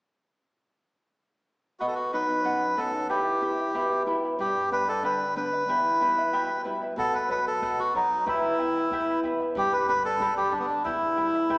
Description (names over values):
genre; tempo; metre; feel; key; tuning
andean folk, Andean ensemble; 93 BPM; 2/4; straight; E minor; A4 = 440 Hz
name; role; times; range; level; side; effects
melodica; melody; 1.8-11.6 s; B3 to B4; -25 LUFS; equal; none
charango; accompaniment; 1.8-11.6 s; E4 to B5; -30 LUFS; equal; none
flamenco guitar; accompaniment; 1.8-11.6 s; E2 to G4; -31 LUFS; equal; none
bombo; percussion; 7.0-11.6 s; none; -48 LUFS; equal; none
room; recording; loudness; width
wet recital hall reverb, RT60 1.6 s; recorded in a church or concert hall, small speaker sound; -23 LUFS; side -29 dB against mid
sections
1.8-7.0 A section; 7.0-11.6 B section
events
none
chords
1.8 B; 3.1 Em; 4.4 G; 5.7 Em; 7.0 B; 8.3 Em; 9.6 G; 10.8 Em